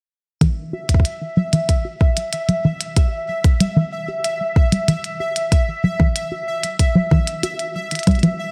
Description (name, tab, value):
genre	IDM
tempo	94 BPM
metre	4/4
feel	straight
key	unclear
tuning	A4 = 440 Hz
part	deep acid bass	arpeggios	0.4-8.3 s	E3 to G4	-21 LUFS	equal	delay
part	electronic hi-hat	drums	0.4-8.4 s	none	-28 LUFS	equal	none
part	electronic kick drum	drums	0.4-8.2 s	none	-18 LUFS	equal	none
part	pulsing gated texture	texture	0.7-8.5 s	E5	-27 LUFS	equal	chorus, built-in reverb
room	moderate plate reverb, RT60 2.0 s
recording	dreamy mix soaked in reverb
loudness	-19 LUFS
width	mono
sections	0.4-8.5 A section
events	filter sweep on acid bass 0.4-8.5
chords	0.4 Esus2; 3.0 Em; 5.5 Esus2; 7.8 N.C.